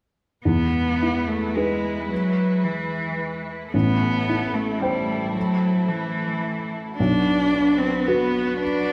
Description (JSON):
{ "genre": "neoclassical piano and strings", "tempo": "110 BPM", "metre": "3/4", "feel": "rubato", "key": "unclear", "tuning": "A4 = 437 Hz", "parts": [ { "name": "dark studio string section", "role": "sustained chords", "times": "0.4-8.9 s", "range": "F#3 to B4", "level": "-34 LUFS", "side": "equal", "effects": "none" }, { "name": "rich cello", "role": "second line", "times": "0.5-8.9 s", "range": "E3 to D4", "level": "-26 LUFS", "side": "equal", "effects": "none" }, { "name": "warm upright piano", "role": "accompaniment", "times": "0.5-8.9 s", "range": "A1 to G5", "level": "-26 LUFS", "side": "equal", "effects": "none" } ], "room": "moderate recital hall reverb, RT60 1.6 s", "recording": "recorded in a church or concert hall", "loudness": "-23 LUFS", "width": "mono", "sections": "0.4-8.9 A section", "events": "none", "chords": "0.4 E; 3.7 Am7; 7.0 Bm" }